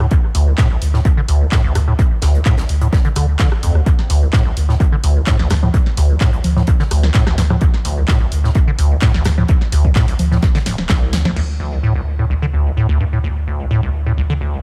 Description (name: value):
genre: acid house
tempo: 128 BPM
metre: 4/4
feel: straight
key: unclear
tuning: A4 = 440 Hz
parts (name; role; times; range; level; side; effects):
- deep acid bass; riff; 0.0-14.6 s; D1 to D3; -21 LUFS; equal; tube saturation, dub echo
- warm sub bass; bass; 0.0-14.6 s; D1 to D2; -19 LUFS; equal; sidechain pumping
- punchy analog drum machine; drums; 0.0-11.5 s; congas, crash cymbal, handclaps, hi-hat, rim click, snare drum; -25 LUFS; equal; studio reverb, dub echo
- electronic kick drum; drums; 0.1-11.0 s; none; -17 LUFS; equal; studio reverb
- tight funk drum kit; drums; 0.1-14.5 s; hi-hat, snare drum; -37 LUFS; equal; high-pass filter on hats, low-pass filter on hats, studio reverb, high-pass filter on snare, low-pass filter on snare, high-pass filter on room, low-pass filter on room
room: light reverb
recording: echo-heavy mix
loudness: -15 LUFS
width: mono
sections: 0.0-11.4 A section; 11.4-14.6 B section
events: drum fill 10.4-11.4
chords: 0.0 D7(no3)